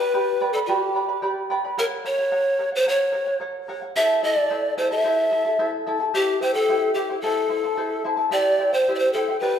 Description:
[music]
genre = andean folk, Andean ensemble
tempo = 110 BPM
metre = 2/4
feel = straight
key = unclear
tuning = A4 = 435 Hz
[part]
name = breathy pan flute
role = melody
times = 0.0-9.6 s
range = G4 to E5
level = -21 LUFS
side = equal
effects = none
[part]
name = charango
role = accompaniment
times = 0.0-9.6 s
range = E4 to B5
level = -26 LUFS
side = equal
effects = none
[sound]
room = wet recital hall reverb, RT60 1.6 s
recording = minimal, uncompressed stereo recording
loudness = -20 LUFS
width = side -8 dB against mid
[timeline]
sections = 0.0-8.3 A section; 8.3-9.6 B section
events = none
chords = 0.0 G; 1.8 F#; 4.0 Am; 6.1 C; 7.2 Am; 8.3 C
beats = 0.14 | 0.69 1.23 | 1.78 2.32 | 2.87 3.41 | 3.96 4.50 | 5.05 5.59 | 6.14 6.68 | 7.23 7.77 | 8.32 8.86 | 9.41

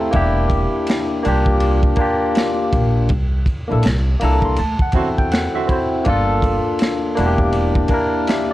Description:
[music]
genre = R&B, neo-soul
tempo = 81 BPM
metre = 4/4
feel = swing 61% on 16ths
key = unclear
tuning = A4 = 440 Hz
[part]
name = barky tine electric piano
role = accompaniment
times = 0.0-8.5 s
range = A3 to C6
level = -18 LUFS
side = left 1 dB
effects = phaser
[part]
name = upright bass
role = bass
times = 0.1-7.8 s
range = E1 to E2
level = -19 LUFS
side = equal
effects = none
[part]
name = crunchy breakbeat drum kit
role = drums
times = 0.1-8.5 s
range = finger snaps, kick drum, ride cymbal, snare drum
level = -21 LUFS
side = equal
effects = none
[part]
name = mellow horn section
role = stabs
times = 4.9-5.8 s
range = D3 to F#4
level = -26 LUFS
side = right 9 dB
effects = none
[sound]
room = studio reverb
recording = none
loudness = -15 LUFS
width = side -15 dB against mid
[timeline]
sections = 0.0-8.5 A section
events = band accent 3.1-6.1; tine electric piano fill 3.8-6.1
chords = 0.1 Em7b5; 1.2 C9sus4; 3.1 C13; 4.6 D7; 6.1 Gm7; 7.2 Em7b5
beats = | 0.13 0.87 1.61 2.35 | 3.10 3.84 4.58 5.32 | 6.06 6.80 7.54 8.28

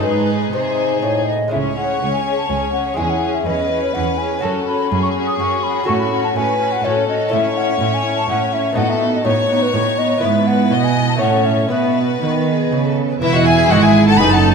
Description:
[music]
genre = classical, baroque-style concerto movement with solo episodes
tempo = 124 BPM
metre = 3/4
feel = straight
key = C# minor, E major from 7.3 s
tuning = A4 = 440 Hz
[part]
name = mellow hollow silver concert flute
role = melody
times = 0.0-14.4 s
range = B4 to D#6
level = -20 LUFS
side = left 2 dB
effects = none
[part]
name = warm chamber violin section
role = melody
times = 0.0-14.5 s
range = D#4 to B5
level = -24 LUFS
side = left 4 dB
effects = none
[part]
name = clear chamber violin section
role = second line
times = 0.0-14.5 s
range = E4 to D#5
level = -22 LUFS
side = left 6 dB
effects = none
[part]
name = lute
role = accompaniment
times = 0.0-14.5 s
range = E2 to C#5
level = -27 LUFS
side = right 1 dB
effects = none
[part]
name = rich chamber viola section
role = accompaniment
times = 0.0-14.5 s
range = B3 to E4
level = -22 LUFS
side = right 2 dB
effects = none
[part]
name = warm chamber cello section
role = bass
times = 0.0-14.5 s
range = C#2 to D#3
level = -20 LUFS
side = right 4 dB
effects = none
[part]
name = warm chamber double bass section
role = bass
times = 13.2-14.5 s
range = E1 to G#1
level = -19 LUFS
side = right 5 dB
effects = none
[sound]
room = moderate concert hall reverb, RT60 2.2 s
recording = dark, warm production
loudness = -14 LUFS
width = side -5 dB against mid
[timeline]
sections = 0.0-1.5 A section; 1.5-13.2 A section; 13.2-14.5 B section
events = none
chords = 0.0 G#; 1.5 C#m; 3.0 C#m/E; 4.4 F#m; 5.9 F#m/A; 7.3 A; 8.8 B7/A; 10.2 E/G#; 11.2 A; 11.7 B; 13.2 E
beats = | 0.03 0.53 1.03 | 1.52 2.02 2.50 | 2.98 3.47 3.95 | 4.44 4.92 5.40 | 5.88 6.36 6.84 | 7.32 7.80 8.29 | 8.77 9.26 9.74 | 10.23 10.72 11.21 | 11.71 12.22 12.72 | 13.21 13.70 14.19

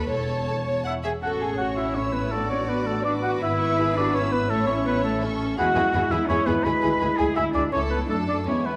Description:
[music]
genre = quick classical-period movement for symphony orchestra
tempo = 165 BPM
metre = 3/4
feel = straight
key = A major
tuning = A4 = 439 Hz
[part]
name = clear symphonic violin section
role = melody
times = 0.0-8.8 s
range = G#5 to E6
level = -43 LUFS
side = equal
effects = none
[part]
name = rich chamber violin section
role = second line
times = 0.0-8.8 s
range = E4 to F#5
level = -33 LUFS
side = equal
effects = none
[part]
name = rich chamber viola section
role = accompaniment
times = 0.0-8.8 s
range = B3 to C#5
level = -35 LUFS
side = equal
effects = none
[part]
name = warm chamber double bass section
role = bass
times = 0.0-8.8 s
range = E1 to F#2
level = -32 LUFS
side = equal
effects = none
[part]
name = warm studio cello section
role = bass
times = 0.0-8.7 s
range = E2 to B4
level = -32 LUFS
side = equal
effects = none
[part]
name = warm oboe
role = second line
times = 0.9-8.8 s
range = A4 to B5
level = -28 LUFS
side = equal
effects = none
[part]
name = mellow French horn section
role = sustained chords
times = 1.2-8.8 s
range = G#3 to E4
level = -32 LUFS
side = equal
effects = none
[sound]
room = moderate scoring stage reverb, RT60 1.8 s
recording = vinyl crackle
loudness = -24 LUFS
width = mono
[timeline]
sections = 0.0-1.2 A section; 1.2-8.8 B section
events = none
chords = 0.1 A/E; 0.9 E; 1.2 A; 2.3 Bm7/A; 3.4 E/G#; 4.5 A; 5.6 E; 6.7 E7/D; 7.7 A/C#; 8.1 D/F#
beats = | 0.09 0.47 0.85 | 1.23 1.59 1.96 | 2.33 2.69 3.06 | 3.42 3.78 4.14 | 4.50 4.86 5.22 | 5.58 5.93 6.29 | 6.65 7.01 7.37 | 7.73 8.10 8.47

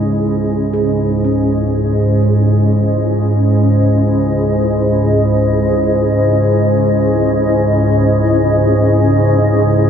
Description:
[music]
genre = dark ambient drone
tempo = free time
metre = none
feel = none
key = unclear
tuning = A4 = 440 Hz
[part]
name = granular cloud pad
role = sustained chords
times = 0.0-9.9 s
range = C#4 to D#5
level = -17 LUFS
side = left 1 dB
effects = built-in reverb
[part]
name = gamelan-type bossed gongs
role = arpeggios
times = 0.0-7.1 s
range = C#3 to G#4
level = -24 LUFS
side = right 2 dB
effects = diffuse ambient delay
[part]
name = organ-like drone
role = drone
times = 0.0-9.9 s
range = C#2 to G#2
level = -13 LUFS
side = equal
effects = ensemble chorus, built-in reverb
[sound]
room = wet cathedral reverb, RT60 5.8 s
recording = in a vast, echoing space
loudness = -11 LUFS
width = side -8 dB against mid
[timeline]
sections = 0.0-9.9 A section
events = none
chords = 0.0 C#madd9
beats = free time

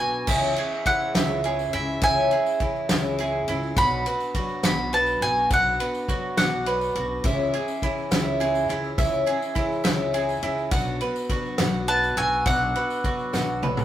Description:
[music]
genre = indie folk with a building arrangement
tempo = 69 BPM (dotted quarters)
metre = 6/8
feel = straight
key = unclear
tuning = A4 = 439 Hz
[part]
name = bowl-back mandolin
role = melody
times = 0.0-7.0, 11.9-13.8 s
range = E5 to B5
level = -24 LUFS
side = equal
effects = none
[part]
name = picked twelve-string acoustic guitar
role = accompaniment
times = 0.0-13.8 s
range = B2 to F#4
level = -29 LUFS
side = left 4 dB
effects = none
[part]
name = bowl-back mandolin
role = arpeggios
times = 0.0-13.8 s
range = E4 to F#5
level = -27 LUFS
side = right 4 dB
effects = none
[part]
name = upright bass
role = bass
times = 0.0-13.8 s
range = B1 to C#2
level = -32 LUFS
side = equal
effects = none
[part]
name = natural country drum kit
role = drums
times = 0.3-13.8 s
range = crash cymbal, kick drum, ride cymbal, snare drum, toms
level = -27 LUFS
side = equal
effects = none
[part]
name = tambourine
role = percussion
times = 0.3-13.8 s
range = none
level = -47 LUFS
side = left 6 dB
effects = none
[part]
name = glockenspiel with rubber mallets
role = second line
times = 6.4-7.0, 11.9-13.8 s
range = D6 to F#6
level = -36 LUFS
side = left 1 dB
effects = none
[sound]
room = wet studio ambience, RT60 0.5 s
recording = rough rehearsal-room recording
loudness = -21 LUFS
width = side -12 dB against mid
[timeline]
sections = 0.3-13.8 A section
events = drum fill 13.3-13.8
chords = 0.3 C#m; 3.8 Bm; 7.2 C#m; 10.7 Bm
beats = | 0.28 1.15 | 2.02 2.89 | 3.76 4.63 | 5.50 6.37 | 7.24 8.11 | 8.98 9.85 | 10.72 11.60 | 12.47 13.34

